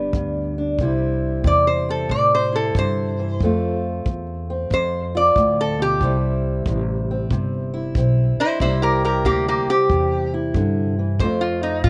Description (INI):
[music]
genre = acoustic country blues, solo or duo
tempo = 92 BPM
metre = 4/4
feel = swing 65% on 8ths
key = C major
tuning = A4 = 440 Hz
[part]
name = lap resonator guitar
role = melody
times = 0.0-11.9 s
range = Bb3 to D5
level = -22 LUFS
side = equal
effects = none
[part]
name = fingerpicked steel-string acoustic guitar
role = accompaniment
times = 0.0-11.9 s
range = F2 to G4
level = -26 LUFS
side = equal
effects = slapback echo
[part]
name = upright bass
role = bass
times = 0.0-11.9 s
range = G1 to A2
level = -26 LUFS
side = equal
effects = none
[part]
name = kick drum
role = drums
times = 0.1-11.9 s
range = none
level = -26 LUFS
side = equal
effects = none
[sound]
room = little or no reverb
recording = recorded outdoors, with no room sound, nothing above 10.9 kHz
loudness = -20 LUFS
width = mono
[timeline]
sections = 0.8-11.9 A section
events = resonator guitar played with a steel bar solo 0.8-11.9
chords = 0.0 G; 0.8 C; 3.4 F; 6.0 C; 11.2 F